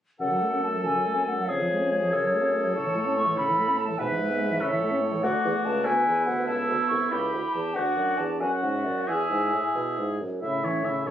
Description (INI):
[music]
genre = quick classical-period movement for wind quintet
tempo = 95 BPM (dotted quarters)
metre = 6/8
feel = rubato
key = F# minor, A major from 5.2 s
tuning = A4 = 440 Hz
[part]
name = mellow hollow silver concert flute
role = melody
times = 0.2-11.1 s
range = C#5 to C#6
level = -27 LUFS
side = left 1 dB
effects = none
[part]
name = warm oboe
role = second line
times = 0.2-11.1 s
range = E4 to E5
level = -32 LUFS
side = left 1 dB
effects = none
[part]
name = warm French horn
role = accompaniment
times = 0.2-11.1 s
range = B2 to E4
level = -32 LUFS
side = left 1 dB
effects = none
[part]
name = warm clarinet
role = accompaniment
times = 0.2-11.1 s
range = C#4 to F#5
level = -31 LUFS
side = right 2 dB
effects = none
[part]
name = dark bassoon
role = bass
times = 0.2-11.1 s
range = C2 to B2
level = -30 LUFS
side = right 2 dB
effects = none
[sound]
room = light reverb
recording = recorded on a phone in the room, studio ambience, compression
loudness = -23 LUFS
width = side -10 dB against mid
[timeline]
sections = 0.2-10.4 A section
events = none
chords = 0.2 F#m; 1.5 C#/E#; 2.1 F#m; 2.7 A; 4.0 E/G#; 4.6 A; 5.2 Dmaj9; 5.9 E7/D; 6.5 A/C#; 7.1 A7/C#; 7.8 Dmaj7; 9.1 E; 10.4 A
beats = | 0.20 0.85 | 1.48 2.11 | 2.75 3.38 | 3.99 4.61 | 5.24 5.86 | 6.48 7.11 | 7.75 8.40 | 9.07 9.75 | 10.42 11.06